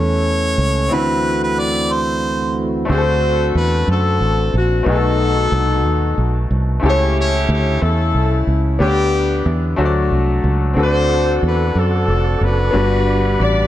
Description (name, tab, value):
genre	gospel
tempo	61 BPM (dotted quarters)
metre	6/8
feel	straight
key	unclear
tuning	A4 = 436 Hz
part	bright harmonica	melody	0.0-2.7 s	B4 to D5	-20 LUFS	right 1 dB	slapback echo
part	bright grand piano	accompaniment	0.0-13.7 s	G2 to B5	-21 LUFS	left 3 dB	none
part	tonewheel organ	sustained chords	0.0-2.9, 10.8-13.7 s	D2 to B5	-22 LUFS	right 2 dB	slow rotary speaker
part	fingered electric bass	bass	0.0-13.7 s	F1 to F#2	-17 LUFS	right 1 dB	none
part	warm horn section	melody	2.9-13.7 s	B3 to D5	-19 LUFS	left 2 dB	none
room	light reverb, small room ambience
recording	dark, warm production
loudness	-14 LUFS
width	side -13 dB against mid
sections	0.0-2.9 A section; 2.9-13.7 B section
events	none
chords	0.0 A9/E; 0.9 D13; 2.9 D7; 4.9 B7; 6.8 A7/C#; 8.8 G/D; 9.8 D; 10.8 D7; 12.7 Gmaj7